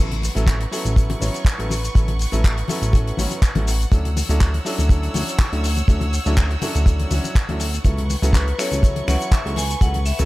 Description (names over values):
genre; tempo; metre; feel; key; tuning
nu-disco, nu disco; 122 BPM; 4/4; straight; A major; A4 = 440 Hz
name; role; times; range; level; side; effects
bright grand piano; accompaniment; 0.0-10.3 s; F#3 to C#5; -28 LUFS; equal; sidechain pumping, slapback echo
clear studio violin section; sustained chords; 0.0-10.3 s; B4 to E6; -32 LUFS; right 2 dB; sidechain pumping
chorused synth bass; bass; 0.0-10.3 s; A1 to D2; -21 LUFS; equal; none
damped 70s drum kit; drums; 0.1-10.3 s; finger snaps, handclaps, hi-hat, shaker; -28 LUFS; left 1 dB; none
congas and cabasa; percussion; 0.1-10.3 s; none; -29 LUFS; left 3 dB; none
kick drum; drums; 0.5-9.9 s; none; -15 LUFS; equal; none
vibraphone with hard mallets; melody; 8.3-10.3 s; B4 to G#5; -27 LUFS; left 2 dB; analog delay
room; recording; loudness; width
small room ambience; none; -17 LUFS; side -19 dB against mid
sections
0.0-10.3 A section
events
none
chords
0.0 A69; 3.9 Dmaj9; 7.9 A69/C#